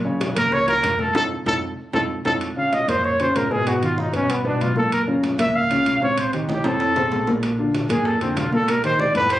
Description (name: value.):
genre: Afro-Cuban jazz.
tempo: 191 BPM.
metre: 4/4.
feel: straight.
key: Bb minor.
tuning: A4 = 440 Hz.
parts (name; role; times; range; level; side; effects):
dark grand piano; accompaniment; 0.0-9.4 s; A2 to Bb5; -23 LUFS; equal; none.
upright bass; bass; 0.0-9.4 s; Bb1 to Ab2; -31 LUFS; equal; none.
congas; percussion; 0.1-9.4 s; none; -31 LUFS; left 1 dB; none.
bongos; percussion; 0.2-2.3, 7.4-9.4 s; none; -33 LUFS; left 5 dB; none.
timbales; percussion; 0.2-9.4 s; none; -30 LUFS; right 5 dB; none.
breathy trumpet; melody; 0.4-9.4 s; B3 to F5; -21 LUFS; equal; none.
room: moderate spring reverb, RT60 1.3 s.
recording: recorded on a phone in the room, club reverb, compression.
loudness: -18 LUFS.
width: side -14 dB against mid.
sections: 0.0-2.4 A section; 2.4-9.4 B section.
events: drum fill 1.2-2.4, 6.5-7.4; band accent 1.2-2.4; trumpet solo 2.4-9.4.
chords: 0.0 Gbmaj7; 1.2 F7; 2.4 Bbm7; 3.7 Abm7; 4.3 G; 4.9 Gbmaj7; 6.2 Cm; 6.8 F; 7.4 Bbadd9; 8.7 Cm7.